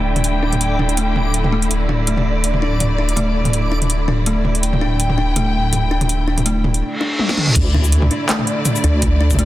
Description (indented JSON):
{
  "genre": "half-time drum and bass",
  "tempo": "164 BPM",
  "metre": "4/4",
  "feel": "swing 55% on 16ths, half-time",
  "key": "unclear",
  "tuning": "A4 = 440 Hz",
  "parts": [
    { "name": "warm studio string section", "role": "sustained chords", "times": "0.0-9.4 s", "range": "D3 to G5", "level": "-23 LUFS", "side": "left 1 dB", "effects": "sidechain pumping, low-pass filter" },
    { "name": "kalimba", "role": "arpeggios", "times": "0.0-9.4 s", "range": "A3 to D4", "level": "-23 LUFS", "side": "left 2 dB", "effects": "low-pass filter, tape echo" },
    { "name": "deep soft wobble bass", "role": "bass", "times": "0.0-9.4 s", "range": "D1 to D2", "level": "-18 LUFS", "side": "equal", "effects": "chorus, tube saturation" },
    { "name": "backwards swelling texture", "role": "texture", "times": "0.0-6.8 s", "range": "D5", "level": "-30 LUFS", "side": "right 2 dB", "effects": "built-in reverb" },
    { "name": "drum and bass drum kit", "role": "drums", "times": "0.2-9.4 s", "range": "crash cymbal, handclaps, hi-hat, shaker, snare drum, toms", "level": "-21 LUFS", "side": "equal", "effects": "soft clipping on snare" },
    { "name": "reverse cymbal", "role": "sound effects", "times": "6.9-7.6 s", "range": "none", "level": "-21 LUFS", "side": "right 1 dB", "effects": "none" },
    { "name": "electronic kick drum", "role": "drums", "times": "7.6-9.4 s", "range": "none", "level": "-20 LUFS", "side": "equal", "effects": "none" }
  ],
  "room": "light reverb, digital ambience",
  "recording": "dense, heavily limited modern master",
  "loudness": "-15 LUFS",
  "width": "side -15 dB against mid",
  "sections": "0.0-7.6 A section; 7.6-9.4 B section",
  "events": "reverse cymbal 6.9-7.6; drum fill 7.2-7.6; drop 7.6-9.4",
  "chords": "0.0 D5"
}